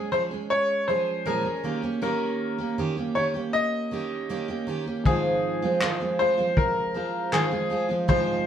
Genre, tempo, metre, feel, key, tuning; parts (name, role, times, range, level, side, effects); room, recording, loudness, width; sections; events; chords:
acoustic pop; 79 BPM; 4/4; straight; Ab major; A4 = 441 Hz
bright upright piano; melody; 0.0-8.5 s; Ab4 to Eb5; -26 LUFS; left 2 dB
picked steel-string acoustic guitar; accompaniment; 0.0-8.5 s; Ab2 to Ab4; -27 LUFS; right 3 dB
warm grand piano; accompaniment; 5.0-8.5 s; Ab3 to C5; -35 LUFS; left 4 dB
cloth-damped thuddy drum kit; drums; 5.1-8.3 s; handclaps, kick drum; -25 LUFS; left 1 dB
wet studio reverb, RT60 0.8 s; band playing live in one room; -23 LUFS; side -9 dB against mid
0.0-8.5 A section
0.0 Bbm7; 1.6 Eb7; 5.1 Ab6